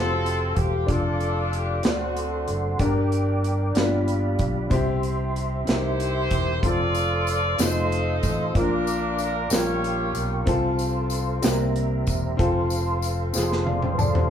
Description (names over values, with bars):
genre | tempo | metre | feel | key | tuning
slow gospel | 63 BPM (dotted quarters) | 6/8 | straight | F major | A4 = 438 Hz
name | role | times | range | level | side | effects
warm horn section | melody | 0.0-2.8, 5.7-10.4 s | A3 to D5 | -27 LUFS | equal | none
warm upright piano | accompaniment | 0.0-14.3 s | G2 to A5 | -27 LUFS | left 1 dB | none
percussive tonewheel organ | sustained chords | 0.0-14.3 s | F4 to D6 | -31 LUFS | right 1 dB | slow rotary speaker, chorus vibrato
fingered electric bass | bass | 0.0-14.3 s | E1 to D2 | -26 LUFS | equal | none
modern studio drum kit | drums | 0.3-14.3 s | hi-hat, kick drum, snare drum, toms | -26 LUFS | equal | none
tambourine | percussion | 6.9-14.3 s | none | -34 LUFS | left 6 dB | none
room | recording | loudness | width
moderate studio reverb, RT60 0.6 s | band playing live in one room | -21 LUFS | side -9 dB against mid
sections
0.0-14.3 A section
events
drum fill 13.3-14.3; upright piano fill 13.3-14.3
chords
0.0 F; 0.9 Dm/F; 1.8 D7; 2.8 Gm; 3.8 G7; 4.7 C; 6.6 F; 7.6 F7; 8.6 Bb; 9.5 Bbm6; 10.5 F/C; 11.4 C7; 12.4 F